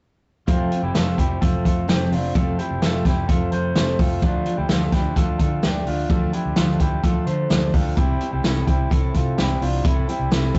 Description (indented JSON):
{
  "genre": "jangly indie pop",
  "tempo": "128 BPM",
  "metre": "4/4",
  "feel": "straight",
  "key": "F major",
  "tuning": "A4 = 443 Hz",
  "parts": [
    { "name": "picked steel-string acoustic guitar", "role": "accompaniment", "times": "0.5-10.6 s", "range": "F2 to E4", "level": "-27 LUFS", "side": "equal", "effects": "none" },
    { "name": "electric guitar through a small old amp", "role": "arpeggios", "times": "0.5-10.6 s", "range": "C4 to C5", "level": "-29 LUFS", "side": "equal", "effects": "none" },
    { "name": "vintage muted fingered electric bass", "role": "bass", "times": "0.5-10.6 s", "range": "F1 to D3", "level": "-28 LUFS", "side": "equal", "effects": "none" },
    { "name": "vintage drum kit", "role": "drums", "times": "0.5-10.6 s", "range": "hi-hat, kick drum, snare drum", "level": "-23 LUFS", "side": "equal", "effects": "none" }
  ],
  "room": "light reverb",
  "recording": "rough rehearsal-room recording, nothing above 7.9 kHz",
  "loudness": "-21 LUFS",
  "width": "mono",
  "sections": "0.5-10.6 A section",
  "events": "none",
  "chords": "0.5 F; 4.2 Dm; 8.0 C",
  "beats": "| 0.48 0.95 1.42 1.88 | 2.35 2.82 3.29 3.76 | 4.22 4.69 5.16 5.63 | 6.10 6.57 7.04 7.50 | 7.97 8.44 8.91 9.38 | 9.85 10.32"
}